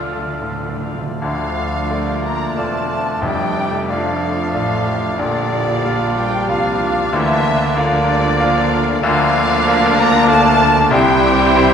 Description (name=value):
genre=classical, romantic movement for piano and orchestra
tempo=69-97 BPM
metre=3/4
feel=rubato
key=D minor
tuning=A4 = 440 Hz
part: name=bright grand piano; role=melody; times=0.0-11.7 s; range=F1 to F5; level=-20 LUFS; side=left 2 dB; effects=none
part: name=rich studio violin section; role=melody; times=0.0-11.7 s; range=D5 to Bb5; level=-23 LUFS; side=left 4 dB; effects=none
part: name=warm clarinet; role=second line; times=0.0-11.7 s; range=D4 to A4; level=-26 LUFS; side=left 1 dB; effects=none
part: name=warm oboe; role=second line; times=0.0-11.7 s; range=C5 to F5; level=-25 LUFS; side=right 2 dB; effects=none
part: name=warm symphonic violin section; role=second line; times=0.0-11.7 s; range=F4 to F5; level=-27 LUFS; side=left 2 dB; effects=none
part: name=dark studio viola section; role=accompaniment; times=0.0-11.7 s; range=D3 to F5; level=-27 LUFS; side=right 3 dB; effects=none
part: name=mellow bassoon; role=accompaniment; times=0.0-11.7 s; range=G3 to D4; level=-26 LUFS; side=right 3 dB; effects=none
part: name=dark French horn section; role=sustained chords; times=0.0-11.7 s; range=D3 to A4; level=-24 LUFS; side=left 3 dB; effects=none
part: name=warm studio cello section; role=bass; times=0.0-11.7 s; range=D2 to D3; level=-28 LUFS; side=right 3 dB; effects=none
part: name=warm studio double bass section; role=bass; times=0.0-11.7 s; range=E1 to D2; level=-27 LUFS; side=right 3 dB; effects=none
part: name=timpani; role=percussion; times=0.0-4.2 s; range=F2 to D3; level=-30 LUFS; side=right 2 dB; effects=none
part: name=silver concert flute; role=second line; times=1.2-11.7 s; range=D5 to Bb5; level=-24 LUFS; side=equal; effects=none
part: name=warm trombone section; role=sustained chords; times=1.2-11.7 s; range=E3 to F4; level=-28 LUFS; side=right 3 dB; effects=none
part: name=mellow tuba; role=bass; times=1.2-11.7 s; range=E1 to D2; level=-26 LUFS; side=right 5 dB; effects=none
room=wet scoring stage reverb, RT60 1.7 s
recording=minimal, uncompressed stereo recording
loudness=-14 LUFS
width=side -7 dB against mid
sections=0.0-1.2 A section; 1.2-11.7 B section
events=timpani fill 0.0-1.2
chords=0.0 Dm; 3.2 Dm/F; 5.2 Bb6; 7.1 Bb/D; 10.9 C